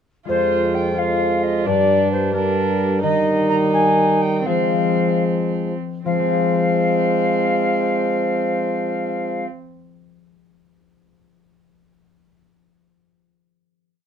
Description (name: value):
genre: classical, renaissance-style consort dance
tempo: 72-88 BPM (dotted quarters)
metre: 6/8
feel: straight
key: F dorian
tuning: A4 = 436 Hz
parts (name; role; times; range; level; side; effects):
- concert harp; accompaniment; 0.2-9.9 s; F2 to C5; -25 LUFS; left 10 dB; none
- mellow alto recorder; melody; 0.3-9.5 s; Bb4 to Bb5; -21 LUFS; left 3 dB; none
- dark violin; second line; 0.3-9.5 s; C4 to F4; -25 LUFS; right 6 dB; none
- warm trombone; accompaniment; 0.3-9.5 s; G3 to Ab3; -24 LUFS; right 2 dB; none
- mellow bassoon; bass; 0.3-9.5 s; F2 to F3; -22 LUFS; right 2 dB; none
room: light reverb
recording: none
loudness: -16 LUFS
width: side -8 dB against mid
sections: 0.3-6.0 A section; 6.0-9.4 final chord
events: slowing down 2.3-6.0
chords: 0.3 Fm; 1.7 Gm; 3.0 Eb; 4.5 Fm